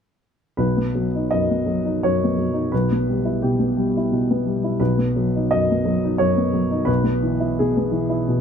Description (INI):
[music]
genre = neoclassical minimalist piano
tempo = 86 BPM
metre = 3/4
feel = rubato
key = B major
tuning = A4 = 440 Hz
[part]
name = warm upright piano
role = solo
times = 0.6-8.4 s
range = B1 to D#5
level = -18 LUFS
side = equal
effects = none
[sound]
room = light reverb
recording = close, detailed microphones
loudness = -18 LUFS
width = side -7 dB against mid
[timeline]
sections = 0.6-8.4 A section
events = none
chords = 0.6 B; 2.7 Em/B; 4.8 B; 6.9 E/B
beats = | 0.60 1.31 2.01 | 2.71 3.41 4.10 | 4.80 5.50 6.19 | 6.88 7.57 8.26